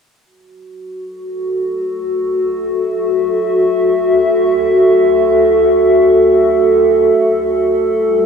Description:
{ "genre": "ambient", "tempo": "free time", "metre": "none", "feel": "none", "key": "unclear", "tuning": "A4 = 440 Hz", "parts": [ { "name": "warbly tape-like pad", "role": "solo", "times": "1.0-8.3 s", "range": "G3 to E5", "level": "-11 LUFS", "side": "equal", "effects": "chorus, built-in reverb, tape echo" } ], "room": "wet huge ambient reverb, RT60 8.0 s", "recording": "dark, warm production", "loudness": "-11 LUFS", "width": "side -6 dB against mid", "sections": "0.3-8.3 A section", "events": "none", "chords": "0.3 F#m7" }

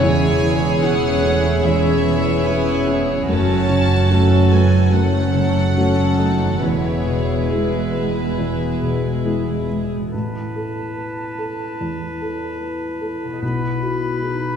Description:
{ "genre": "cinematic, emotional film score for orchestra", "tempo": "68-75 BPM", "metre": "4/4", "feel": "rubato", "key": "unclear", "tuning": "A4 = 440 Hz", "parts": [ { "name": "warm symphonic violin section", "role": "melody", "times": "0.0-9.7 s", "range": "B4 to A5", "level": "-28 LUFS", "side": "left 1 dB", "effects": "none" }, { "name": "dark studio violin section", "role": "second line", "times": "0.0-9.9 s", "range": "E4 to C#5", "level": "-26 LUFS", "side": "left 3 dB", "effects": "none" }, { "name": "felt-muted upright piano", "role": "accompaniment", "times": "0.0-14.6 s", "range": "A1 to B4", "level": "-23 LUFS", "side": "equal", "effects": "none" }, { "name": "warm studio viola section", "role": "accompaniment", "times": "0.0-9.9 s", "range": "F#3 to E4", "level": "-27 LUFS", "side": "right 1 dB", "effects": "none" }, { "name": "mellow French horn section", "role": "sustained chords", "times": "0.0-9.8 s", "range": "F#3 to G#4", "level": "-24 LUFS", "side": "left 1 dB", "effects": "none" }, { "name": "concert harp", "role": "arpeggios", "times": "0.0-14.6 s", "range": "E2 to D#5", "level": "-25 LUFS", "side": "left 3 dB", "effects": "none" }, { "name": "dark studio cello section", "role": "bass", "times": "0.0-9.9 s", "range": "E2 to F#2", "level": "-21 LUFS", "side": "right 3 dB", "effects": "none" }, { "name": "warm symphonic double bass section", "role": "bass", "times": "0.0-9.9 s", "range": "E1 to F#1", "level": "-24 LUFS", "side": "right 2 dB", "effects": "none" }, { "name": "bright oboe", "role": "second line", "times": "10.1-14.6 s", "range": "B4", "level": "-31 LUFS", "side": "equal", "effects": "none" }, { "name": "silver concert flute", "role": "second line", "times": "10.1-14.6 s", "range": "A5 to B5", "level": "-32 LUFS", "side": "right 1 dB", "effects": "none" }, { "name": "warm clarinet", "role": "second line", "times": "10.1-14.6 s", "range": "D#4 to E4", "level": "-29 LUFS", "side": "left 2 dB", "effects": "none" } ], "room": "wet scoring stage reverb, RT60 1.6 s", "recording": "heard from further back in the room", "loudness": "-16 LUFS", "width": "side -8 dB against mid", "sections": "0.0-10.1 A section; 10.1-14.6 B section", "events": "none", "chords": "0.0 C#m/E; 3.3 F#m; 6.6 E; 10.1 Asus2; 13.4 B" }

